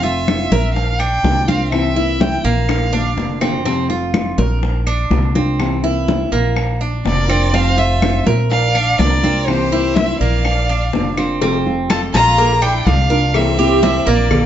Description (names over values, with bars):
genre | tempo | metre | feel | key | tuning
latin, Cuban son and guajira | 124 BPM | 4/4 | straight | F major | A4 = 443 Hz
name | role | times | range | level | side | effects
warm violin | melody | 0.0-3.4, 7.1-14.5 s | C5 to Bb5 | -19 LUFS | equal | none
nylon-string guitar | accompaniment | 0.0-14.3 s | C3 to F4 | -21 LUFS | left 2 dB | none
Cuban tres | arpeggios | 0.0-14.5 s | Bb3 to Bb4 | -21 LUFS | right 4 dB | none
upright bass | bass | 0.0-14.5 s | F1 to C2 | -18 LUFS | equal | none
congas | percussion | 0.0-14.5 s | none | -20 LUFS | left 1 dB | none
bongos and cowbell | percussion | 0.3-14.5 s | none | -24 LUFS | left 4 dB | none
claves | percussion | 0.3-14.5 s | none | -28 LUFS | left 2 dB | none
clear studio violin section | second line | 7.1-14.5 s | Bb3 to D5 | -26 LUFS | equal | none
room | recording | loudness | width
light reverb | nothing above 7.8 kHz | -13 LUFS | side -10 dB against mid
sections
0.0-11.4 A section; 11.4-14.5 B section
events
drum fill 2.7-3.7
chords
0.0 F; 0.8 Bb; 1.7 C7; 2.7 Bb; 3.7 F; 4.6 Bb; 5.6 C7; 6.6 Bb; 7.5 F; 8.5 Bb; 9.5 C7; 10.4 Bb; 11.4 F; 12.4 Bb; 13.3 C7